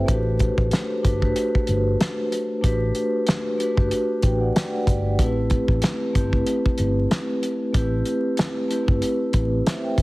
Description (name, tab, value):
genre	hip hop, boom-bap hip-hop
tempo	94 BPM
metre	4/4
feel	swing 55% on 16ths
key	unclear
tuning	A4 = 440 Hz
part	vibraphone with soft mallets	accompaniment	0.0-10.0 s	A3 to G5	-23 LUFS	equal	cassette tape, high-pass filter, low-pass filter
part	vintage muted fingered electric bass	bass	0.0-10.0 s	G1 to A1	-23 LUFS	equal	none
part	cloth-damped thuddy drum kit	drums	0.1-10.0 s	hi-hat, kick drum, snare drum	-23 LUFS	equal	none
room	little or no reverb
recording	heavily compressed radio sound, vinyl crackle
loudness	-20 LUFS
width	side -20 dB against mid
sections	0.0-10.0 A section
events	none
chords	0.1 Gmaj7; 5.2 Am7